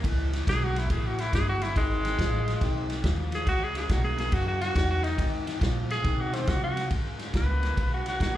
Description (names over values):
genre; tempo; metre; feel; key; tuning
electric blues shuffle; 140 BPM; 4/4; swing 66% on 8ths; C# minor; A4 = 445 Hz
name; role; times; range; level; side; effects
overdriven electric guitar; riff; 0.0-8.4 s; F#2 to A#3; -34 LUFS; left 4 dB; slapback echo
upright bass; bass; 0.0-8.4 s; G1 to B#2; -29 LUFS; equal; none
vintage drum kit; drums; 0.0-8.3 s; kick drum, ride cymbal, snare drum; -29 LUFS; equal; none
clear tenor saxophone; melody; 0.5-8.4 s; G#3 to B4; -30 LUFS; equal; plate reverb, slapback echo
room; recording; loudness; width
little or no reverb; live gig heard through the venue's PA, club reverb; -25 LUFS; side -13 dB against mid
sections
0.0-6.9 A section; 6.9-8.4 B section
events
tenor saxophone solo 0.0-6.9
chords
0.0 A7; 1.8 G#m; 3.5 C#5; 4.3 F#5; 5.2 G#; 6.9 C#5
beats
| 0.04 0.47 0.90 1.32 | 1.75 2.18 2.61 3.04 | 3.47 3.90 4.33 4.75 | 5.18 5.62 6.04 6.47 | 6.91 7.34 7.77 8.20